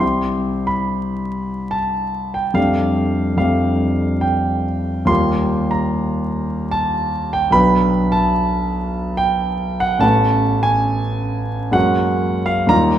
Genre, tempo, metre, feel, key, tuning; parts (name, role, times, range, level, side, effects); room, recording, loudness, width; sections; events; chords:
classical, impressionist solo piano; 60-75 BPM; 3/4; rubato; A4 = 439 Hz
warm concert grand piano; solo; 0.0-13.0 s; A1 to C6; -16 LUFS; equal
wet scoring stage reverb, RT60 1.9 s; minimal, uncompressed stereo recording, vinyl crackle; -16 LUFS; side -10 dB against mid
0.0-13.0 A section
0.0 Cmaj7; 2.6 F69; 5.1 Ebadd9; 7.5 Bm7; 10.0 Aadd9; 11.7 F#add9